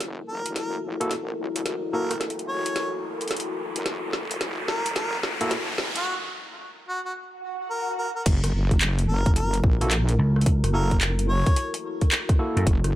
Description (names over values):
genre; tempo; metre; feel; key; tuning
glitch hop; 109 BPM; 4/4; swing 64% on 16ths; unclear; A4 = 438 Hz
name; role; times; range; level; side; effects
dark analog pad; sustained chords; 0.0-13.0 s; E4 to D#5; -33 LUFS; left 2 dB; chorus, sidechain pumping
wobble bass; bass; 0.0-12.9 s; F#1 to F#2; -26 LUFS; equal; chorus, tube saturation, high-pass filter
drum and bass drum kit; drums; 0.0-12.9 s; crash cymbal, handclaps, hi-hat, rim click, snare drum; -28 LUFS; equal; none
riser and swell; sound effects; 1.3-8.3 s; none; -33 LUFS; equal; none
warm harmonica; melody; 0.3-11.7 s; F#4 to C#5; -32 LUFS; equal; tape echo
overdriven tine electric piano; stabs; 1.0-5.5, 9.8-12.6 s; A#3 to A4; -31 LUFS; equal; sidechain pumping, tape echo
electronic kick drum; drums; 8.3-12.8 s; none; -21 LUFS; equal; none
vintage slap bass; bass; 10.2-12.6 s; C#2 to F#2; -21 LUFS; equal; none
room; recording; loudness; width
light reverb; none; -22 LUFS; side -14 dB against mid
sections
0.0-8.3 A section; 8.3-13.0 B section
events
build-up 0.0-8.3; drum fill 0.0-6.1; riser 1.3-6.1; break 6.1-8.3; swell 7.3-8.3; drop 8.3-13.0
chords
0.0 F#7#9